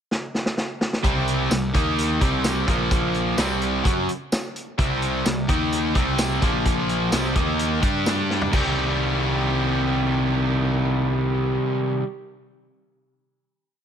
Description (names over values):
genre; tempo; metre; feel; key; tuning
classic rock; 128 BPM; 4/4; straight; C minor; A4 = 440 Hz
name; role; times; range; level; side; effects
vintage drum kit; drums; 0.1-8.6 s; crash cymbal, hi-hat, kick drum, snare drum, tambourine, toms; -24 LUFS; equal; none
cranked stack guitar; riff; 1.0-12.1 s; Bb2 to G4; -22 LUFS; equal; overdrive
fuzz picked electric bass; bass; 1.0-11.6 s; Bb1 to G2; -27 LUFS; equal; overdrive
room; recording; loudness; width
light reverb, small room ambience; none; -20 LUFS; side -8 dB against mid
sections
0.0-1.0 pickup bar; 1.0-8.5 riff; 8.5-12.3 final chord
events
drum fill 0.1-1.0, 8.3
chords
0.0 N.C.; 1.0 C5; 1.7 Eb5; 2.2 C5; 2.7 Bb5; 3.4 C5; 5.5 Eb5; 6.0 C5; 6.4 Bb5; 7.1 C5; 7.4 Eb5; 7.8 G5; 8.5 Cm